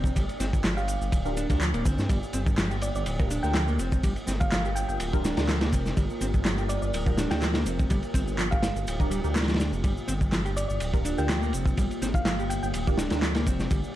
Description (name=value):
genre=breakbeat, breaks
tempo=124 BPM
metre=4/4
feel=swing 53% on 16ths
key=G minor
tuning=A4 = 440 Hz
part: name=deep dark ambient pad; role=sustained chords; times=0.0-14.0 s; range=Bb3 to D5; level=-37 LUFS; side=equal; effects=chorus, built-in reverb, sidechain pumping
part: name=mellow electric guitar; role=riff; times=0.0-13.8 s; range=F3 to G4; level=-33 LUFS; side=equal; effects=tube saturation, tape echo
part: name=dark detuned saw bass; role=bass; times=0.0-13.8 s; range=D1 to G2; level=-29 LUFS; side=equal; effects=none
part: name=crunchy breakbeat drum kit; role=drums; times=0.0-13.8 s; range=kick drum, ride cymbal, snare drum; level=-28 LUFS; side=equal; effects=none
part: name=electronic shaker and handclaps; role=drums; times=0.1-13.9 s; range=none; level=-36 LUFS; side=equal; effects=overdrive
part: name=thumb-piano-like synth pluck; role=melody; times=0.8-12.7 s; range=D5 to G5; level=-36 LUFS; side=right 1 dB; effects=chorus, AM radio sound, tape echo
part: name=filtered dub chord stab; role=stabs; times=1.3-13.2 s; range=D4 to Bb4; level=-37 LUFS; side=right 2 dB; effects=phaser, wide subtle chorus, tape echo
room=light reverb, small room reverb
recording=dark, warm production, vinyl crackle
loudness=-24 LUFS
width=side -14 dB against mid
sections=0.0-14.0 A section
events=none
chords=0.0 Gm7